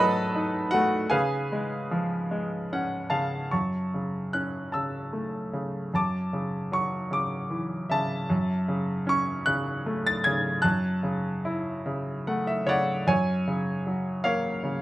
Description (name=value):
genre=classical, lyrical solo piano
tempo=51 BPM (dotted quarters)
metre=6/8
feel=rubato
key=F# minor from 3.5 s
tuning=A4 = 440 Hz
part: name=clear grand piano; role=solo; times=0.0-14.8 s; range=F#2 to A6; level=-25 LUFS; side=equal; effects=none
room=little or no reverb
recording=close, detailed microphones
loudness=-25 LUFS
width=side -16 dB against mid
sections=0.0-3.5 A section; 3.5-13.1 B section; 13.1-14.8 C section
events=grand piano fill 2.3-3.5, 11.8-13.1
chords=0.0 B7; 1.1 C#7; 3.5 F#m7; 13.1 F#add9